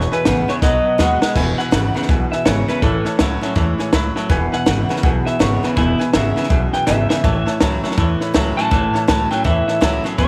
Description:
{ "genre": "rockabilly", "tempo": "163 BPM", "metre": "4/4", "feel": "swing 62% on 8ths", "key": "E major", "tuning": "A4 = 441 Hz", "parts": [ { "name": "electric guitar through a small old amp", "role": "melody", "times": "0.0-10.3 s", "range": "E4 to A5", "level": "-24 LUFS", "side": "equal", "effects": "tape echo" }, { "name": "bright upright piano", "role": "accompaniment", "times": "0.0-10.3 s", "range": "B4 to B5", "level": "-29 LUFS", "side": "equal", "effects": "none" }, { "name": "picked steel-string acoustic guitar", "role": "accompaniment", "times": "0.0-10.3 s", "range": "E2 to F#4", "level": "-30 LUFS", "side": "equal", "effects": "none" }, { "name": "clean electric guitar", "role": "riff", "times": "0.0-10.3 s", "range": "E2 to G#3", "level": "-24 LUFS", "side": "equal", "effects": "lush chorus" }, { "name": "upright bass", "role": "bass", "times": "0.0-10.3 s", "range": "E1 to E2", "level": "-23 LUFS", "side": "equal", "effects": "none" }, { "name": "compact cocktail drum kit", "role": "drums", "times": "0.0-10.3 s", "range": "crash cymbal, hi-hat, kick drum, snare drum", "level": "-22 LUFS", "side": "equal", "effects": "none" } ], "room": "light reverb, studio ambience", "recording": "none", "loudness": "-17 LUFS", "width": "mono", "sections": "0.0-1.4 A section; 1.4-10.3 B section", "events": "drum fill 0.6-1.4, 6.9-7.2; clean electric guitar solo 1.4-10.3", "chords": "0.0 E; 0.6 B; 1.4 E; 2.8 A; 4.3 E; 7.2 A", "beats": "0.25 0.62 0.99 | 1.36 1.73 2.09 2.46 | 2.83 3.20 3.56 3.93 | 4.30 4.67 5.03 5.40 | 5.77 6.14 6.50 6.87 | 7.24 7.61 7.98 8.34 | 8.71 9.08 9.45 9.81 | 10.18" }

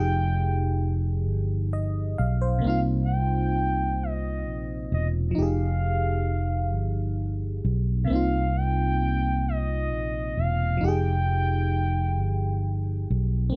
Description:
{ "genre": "slow six-eight R&B", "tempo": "44 BPM (dotted quarters)", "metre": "6/8", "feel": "straight", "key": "unclear", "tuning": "A4 = 440 Hz", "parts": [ { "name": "gliding portamento lead", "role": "melody", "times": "0.0-13.1 s", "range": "Eb5 to G5", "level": "-33 LUFS", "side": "equal", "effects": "chorus, phaser" }, { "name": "FM electric piano", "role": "accompaniment", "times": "0.0-13.6 s", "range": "C3 to F5", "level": "-33 LUFS", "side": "equal", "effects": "chorus" }, { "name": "fingered electric bass", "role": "bass", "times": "0.0-13.5 s", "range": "E1 to C2", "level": "-27 LUFS", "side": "equal", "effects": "none" } ], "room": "light reverb", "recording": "dark, warm production", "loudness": "-26 LUFS", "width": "mono", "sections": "0.0-13.6 A section", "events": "none", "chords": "0.0 Fm9; 2.6 Cm7; 5.4 Fm9; 8.1 Cm7; 10.8 Fm9", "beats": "1.27 | 2.63 4.00 | 5.36 6.72 | 8.09 9.45 | 10.82 12.18 | 13.54" }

